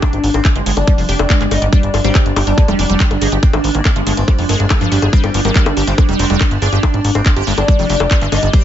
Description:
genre	psychedelic trance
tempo	141 BPM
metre	4/4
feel	straight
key	G phrygian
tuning	A4 = 438 Hz
part	oud	melody	0.0-8.6 s	G3 to Eb4	-22 LUFS	left 2 dB	phaser, sidechain pumping, dub echo
part	evolving wavetable pad	sustained chords	0.0-8.6 s	D4	-22 LUFS	right 1 dB	ensemble chorus, built-in reverb, phaser, sidechain pumping
part	electronic kick drum	drums	0.0-8.6 s	none	-12 LUFS	equal	small room ambience
part	garage drum kit	drums	0.0-8.6 s	bongos, handclaps, hi-hat	-20 LUFS	left 3 dB	small room ambience
part	downlifter	sound effects	0.0-1.7 s	none	-40 LUFS	equal	none
part	fat analog bass	bass	0.1-8.5 s	F1 to Ab1	-16 LUFS	equal	none
part	wide unison pluck	riff	0.6-8.6 s	F3 to Ab4	-21 LUFS	moving between left 7 dB and right 9 dB	auto-pan, sidechain pumping, tape echo
room	little or no reverb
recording	nothing above 7.7 kHz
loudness	-11 LUFS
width	side -11 dB against mid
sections	0.0-8.6 A section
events	none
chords	0.0 G5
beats	| 0.02 0.45 0.88 1.30 | 1.73 2.15 2.58 3.00 | 3.43 3.85 4.28 4.71 | 5.13 5.56 5.98 6.41 | 6.83 7.26 7.68 8.11 | 8.54

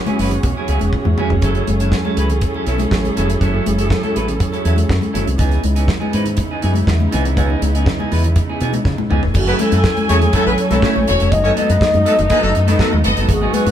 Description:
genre	disco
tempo	121 BPM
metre	4/4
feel	straight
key	F# dorian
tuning	A4 = 440 Hz
part	dark studio string section	sustained chords	0.0-13.7 s	C#3 to G#5	-22 LUFS	right 2 dB	none
part	clean electric guitar	accompaniment	0.1-13.7 s	E3 to B4	-23 LUFS	right 2 dB	none
part	damped 70s drum kit	drums	0.1-13.7 s	crash cymbal, hi-hat, kick drum, snare drum, toms	-20 LUFS	equal	none
part	congas	percussion	0.1-13.7 s	none	-24 LUFS	left 4 dB	none
part	fingered electric bass with an envelope filter	bass	0.2-13.7 s	E1 to C#3	-18 LUFS	equal	none
part	wooden-headed alto flute	melody	9.4-13.7 s	F#4 to D#5	-19 LUFS	left 3 dB	tape echo
part	warm horn section	stabs	9.5-13.0 s	D#3 to C#5	-23 LUFS	left 1 dB	none
part	clear symphonic string section	second line	10.8-13.3 s	A3 to D#5	-22 LUFS	equal	none
room	moderate stone room reverb, RT60 1.3 s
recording	band playing live in one room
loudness	-14 LUFS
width	side -10 dB against mid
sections	0.0-9.3 A section; 9.3-13.7 B section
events	drum fill 0.9-1.4, 8.9-9.3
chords	0.0 E69; 1.4 F#m7; 5.4 C#m9; 9.3 F#m7; 11.3 B7/F#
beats	0.44 0.93 | 1.43 1.92 2.42 2.91 | 3.41 3.90 4.40 4.89 | 5.39 5.88 6.38 6.87 | 7.37 7.86 8.36 8.85 | 9.35 9.84 10.33 10.83 | 11.32 11.81 12.30 12.80 | 13.29

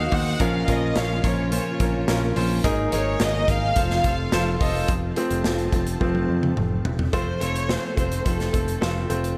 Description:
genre	piano-driven pop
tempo	107 BPM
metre	4/4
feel	straight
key	unclear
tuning	A4 = 438 Hz
part	warm studio violin section	melody	0.0-9.1 s	A4 to Gb5	-30 LUFS	equal	slapback echo
part	bright grand piano	accompaniment	0.0-9.4 s	Ab2 to Eb5	-29 LUFS	equal	none
part	warm studio string section	sustained chords	0.0-7.1 s	Bb2 to A5	-40 LUFS	equal	none
part	fingerpicked steel-string acoustic guitar	riff	0.0-9.4 s	F2 to A4	-33 LUFS	equal	none
part	overdriven picked electric bass	bass	0.0-9.3 s	E1 to F2	-28 LUFS	equal	none
part	modern studio drum kit	drums	0.1-9.4 s	hi-hat, kick drum, snare drum, toms	-28 LUFS	equal	none
room	light reverb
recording	none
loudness	-23 LUFS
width	mono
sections	0.0-4.9 A section; 4.9-7.1 B section; 7.1-9.4 C section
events	grand piano solo 4.9-7.1; drum fill 6.0-7.1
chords	0.4 Bbm; 2.6 Absus2; 3.8 F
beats	| 0.40 0.96 1.52 2.08 | 2.64 3.20 3.76 4.32 | 4.89 5.45 6.01 6.57 | 7.13 7.69 8.26 8.82

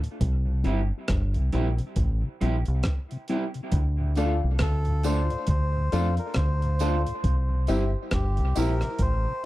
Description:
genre	dub reggae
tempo	68 BPM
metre	4/4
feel	swing 60% on 16ths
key	unclear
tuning	A4 = 436 Hz
part	mellow tonewheel organ	accompaniment	0.0-9.3 s	D2 to F4	-36 LUFS	left 2 dB	slow rotary speaker, dub echo
part	breakbeat sampler-style drum kit	drums	0.0-9.2 s	hi-hat, kick drum, rim click	-27 LUFS	equal	none
part	deep dub fingered electric bass	bass	0.2-9.3 s	G1 to F2	-24 LUFS	equal	none
part	electric guitar at the edge of break-up	accompaniment	0.6-8.7 s	G3 to A4	-34 LUFS	right 3 dB	dub echo
part	clear grand piano	stabs	4.2-8.9 s	E4 to F5	-33 LUFS	left 6 dB	dub echo
part	tambourine	percussion	4.2-8.8 s	none	-43 LUFS	right 9 dB	none
part	melodica	melody	4.6-9.5 s	G4 to C5	-32 LUFS	equal	dub echo
room	little or no reverb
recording	dry, close 1970s-style studio recording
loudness	-23 LUFS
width	side -17 dB against mid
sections	0.0-9.5 A section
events	break 0.0-3.7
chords	0.2 C; 3.7 Dm; 7.2 C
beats	| 0.21 1.09 1.97 2.85 | 3.73 4.61 5.49 6.37 | 7.25 8.12 9.00

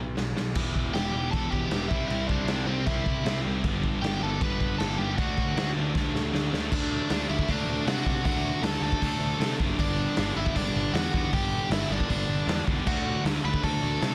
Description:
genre	punk rock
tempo	156 BPM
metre	4/4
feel	straight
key	unclear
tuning	A4 = 440 Hz
part	crunchy overdriven guitar	riff	0.0-14.1 s	E2 to D4	-36 LUFS	equal	none
part	tight distorted guitar	riff	0.0-14.1 s	G2 to E4	-36 LUFS	equal	distortion
part	fuzz picked electric bass	bass	0.0-14.1 s	E1 to C3	-34 LUFS	equal	overdrive
part	raw garage drum kit	drums	0.2-14.1 s	crash cymbal, hi-hat, kick drum, snare drum	-32 LUFS	equal	none
part	biting lead guitar	melody	0.9-14.1 s	C4 to B5	-34 LUFS	equal	overdrive, tape echo
room	little or no reverb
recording	dense, heavily limited modern master, faint mains hum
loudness	-27 LUFS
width	mono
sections	0.6-6.7 A section; 6.7-14.1 B section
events	drum fill 0.0-0.6, 5.9-6.7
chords	0.0 B5; 0.6 Em; 1.9 C; 3.6 G; 5.2 D; 9.8 G; 12.9 D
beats	0.17 | 0.55 0.94 1.32 1.71 | 2.09 2.48 2.87 3.25 | 3.64 4.02 4.41 4.79 | 5.17 5.56 5.94 6.33 | 6.71 7.10 7.48 7.87 | 8.25 8.63 9.02 9.40 | 9.79 10.17 10.55 10.94 | 11.32 11.71 12.09 12.47 | 12.86 13.24 13.63 14.01

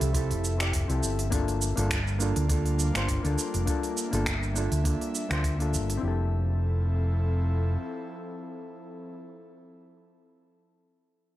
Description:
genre	sunset chillout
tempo	102 BPM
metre	4/4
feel	swing 55% on 16ths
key	F major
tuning	A4 = 439 Hz
part	hollow-body jazz guitar	accompaniment	0.0-9.9 s	Bb3 to D5	-32 LUFS	moving between left 7 dB and right 6 dB	auto-pan, analog delay
part	airy breathy pad	sustained chords	0.0-9.1 s	F3 to E5	-36 LUFS	equal	chorus
part	fingered electric bass	bass	0.0-7.8 s	F1 to D2	-26 LUFS	equal	none
part	smooth R&B drum kit	drums	0.0-6.0 s	finger snaps, hi-hat, shaker	-33 LUFS	right 2 dB	none
part	electronic kick drum	drums	0.1-5.6 s	none	-32 LUFS	equal	none
room	digital ambience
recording	dry, gritty hardware recording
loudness	-25 LUFS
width	side -14 dB against mid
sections	0.0-6.0 A section; 6.0-8.4 B section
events	none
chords	0.0 Fmaj7; 1.3 Gm7; 6.0 Fmaj7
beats	0.14 0.73 | 1.32 1.91 2.50 3.09 | 3.67 4.26 4.85 5.44 | 6.03 6.62 7.20 7.79

